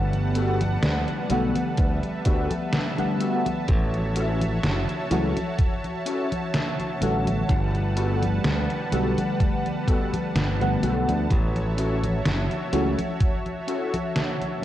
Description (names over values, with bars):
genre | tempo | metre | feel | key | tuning
vaporwave | 63 BPM | 4/4 | swing 54% on 16ths | A mixolydian | A4 = 440 Hz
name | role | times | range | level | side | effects
FM electric piano with soft pad layer | accompaniment | 0.0-14.6 s | D3 to F#5 | -27 LUFS | equal | phaser, analog chorus, analog delay
lush unison pad | sustained chords | 0.0-14.6 s | G3 to A5 | -31 LUFS | right 1 dB | chorus
modern bright fingered electric bass | bass | 0.0-12.9 s | F#1 to D2 | -25 LUFS | equal | none
detuned 8-bit digital drum machine | drums | 0.1-14.6 s | congas, hi-hat, snare drum | -29 LUFS | left 1 dB | gated reverb
mellow electric guitar | riff | 0.3-13.9 s | B3 to A4 | -32 LUFS | left 2 dB | ensemble chorus, analog delay
electronic kick drum | drums | 1.8-13.4 s | none | -23 LUFS | equal | none
room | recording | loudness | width
light reverb, digital ambience | cassette tape | -22 LUFS | side -13 dB against mid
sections
0.0-14.6 A section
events
none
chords
0.0 Gmaj9; 3.7 A6; 7.5 Gmaj9; 11.3 A6